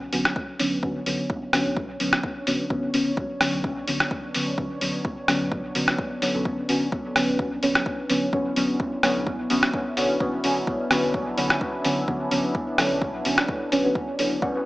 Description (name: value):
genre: dub techno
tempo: 128 BPM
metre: 4/4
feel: swing 54% on 16ths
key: B minor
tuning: A4 = 440 Hz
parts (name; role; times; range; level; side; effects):
- deep dark ambient pad; sustained chords; 1.5-14.7 s; B3 to C#5; -32 LUFS; equal; chorus, built-in reverb, sidechain pumping
- soft dub sub bass; bass; 0.0-14.5 s; F#1 to B1; -44 LUFS; equal; sidechain pumping
- deep mellow chord stab; stabs; 0.1-14.4 s; D3 to C#4; -24 LUFS; equal; chorus, phaser, sidechain pumping, dub echo
- lo-fi sampler-style drum kit; drums; 0.1-14.3 s; hi-hat, rim click; -25 LUFS; equal; none
- electronic kick drum; drums; 0.4-14.5 s; none; -30 LUFS; equal; overdrive
- warbly dusty pluck; riff; 14.4-14.5 s; B4 to F#5; -29 LUFS; equal; chorus, sidechain pumping
room: moderate echo chamber reverb, RT60 1.4 s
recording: small speaker sound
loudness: -22 LUFS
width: side -18 dB against mid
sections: 0.0-14.7 A section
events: none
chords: 0.0 Bmadd9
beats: 0.36 0.83 | 1.30 1.77 2.23 2.70 | 3.17 3.64 4.11 4.58 | 5.05 5.52 5.99 6.45 | 6.92 7.39 7.86 8.33 | 8.80 9.27 9.73 10.20 | 10.67 11.14 11.61 12.08 | 12.55 13.02 13.48 13.95 | 14.42